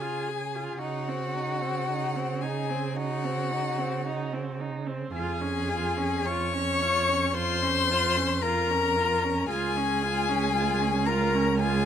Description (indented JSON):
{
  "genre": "classical, slow romantic movement for string quartet",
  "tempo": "56 BPM",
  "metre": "4/4",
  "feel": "rubato",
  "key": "Db major",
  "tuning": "A4 = 439 Hz",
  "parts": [
    { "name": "warm violin", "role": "melody", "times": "0.0-11.9 s", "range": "Gb5 to Db6", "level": "-30 LUFS", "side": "left 9 dB", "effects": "none" },
    { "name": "warm violin", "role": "second line", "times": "0.0-11.9 s", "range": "Gb4 to Db5", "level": "-30 LUFS", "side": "left 2 dB", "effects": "none" },
    { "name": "rich viola", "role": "accompaniment", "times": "0.0-11.9 s", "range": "C4 to Ab4", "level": "-32 LUFS", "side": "right 3 dB", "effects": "none" },
    { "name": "warm cello", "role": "bass", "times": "0.0-11.9 s", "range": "Db2 to Db3", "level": "-31 LUFS", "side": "right 4 dB", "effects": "none" }
  ],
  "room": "moderate recital hall reverb, RT60 1.7 s",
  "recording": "close, detailed microphones",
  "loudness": "-25 LUFS",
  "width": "side -9 dB against mid",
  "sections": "0.0-11.9 A section",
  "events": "none",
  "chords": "0.0 Db; 0.8 Dbsus24; 5.1 Db/F; 9.5 Db"
}